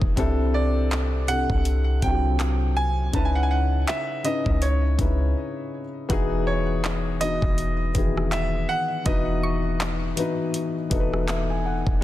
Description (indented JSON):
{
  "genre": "contemporary R&B",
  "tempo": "81 BPM",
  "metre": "4/4",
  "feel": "swing 58% on 16ths",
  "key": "unclear",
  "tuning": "A4 = 440 Hz",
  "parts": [
    { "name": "felt-muted upright piano", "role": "accompaniment", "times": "0.0-12.0 s", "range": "C3 to G#5", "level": "-27 LUFS", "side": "left 3 dB", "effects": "none" },
    { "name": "soft 808-style bass", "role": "bass", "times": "0.0-12.0 s", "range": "E1 to C#2", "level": "-24 LUFS", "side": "equal", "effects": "none" },
    { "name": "smooth R&B drum kit", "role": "drums", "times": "0.0-12.0 s", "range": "handclaps, hi-hat, kick drum, rim click", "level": "-26 LUFS", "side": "equal", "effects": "none" },
    { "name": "bright concert grand piano", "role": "melody", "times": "0.5-11.2 s", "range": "C#5 to A5", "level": "-29 LUFS", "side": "right 2 dB", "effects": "ping-pong delay" },
    { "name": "mallet-like synth pluck", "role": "texture", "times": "6.1-12.0 s", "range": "F#5 to C#6", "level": "-39 LUFS", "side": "equal", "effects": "chorus, ping-pong delay" }
  ],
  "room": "digital ambience",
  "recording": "dense, heavily limited modern master",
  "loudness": "-21 LUFS",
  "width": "side -14 dB against mid",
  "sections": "0.0-12.0 A section",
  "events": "break 5.4-6.1; felt piano fill 10.5-12.0",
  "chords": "0.2 C69; 3.1 C#m9; 6.1 Emaj9"
}